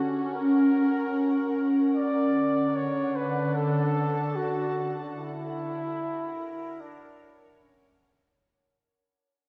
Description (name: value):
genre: ambient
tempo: free time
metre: none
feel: none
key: unclear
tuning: A4 = 440 Hz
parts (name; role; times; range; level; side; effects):
- warm flugelhorn; melody; 0.0-8.2 s; C#4 to D5; -34 LUFS; equal; diffuse ambient delay
- evolving wavetable pad; sustained chords; 0.0-8.4 s; D3 to A5; -28 LUFS; equal; ensemble chorus, built-in reverb
room: wet huge ambient reverb, RT60 7.3 s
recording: small room ambience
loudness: -27 LUFS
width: mono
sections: 0.0-8.4 A section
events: fade-in on flugelhorn 0.0-8.4; filter sweep on ambient pad 0.0-8.4; fade-out 4.1-8.4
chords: 0.0 F#; 1.9 D; 5.2 F#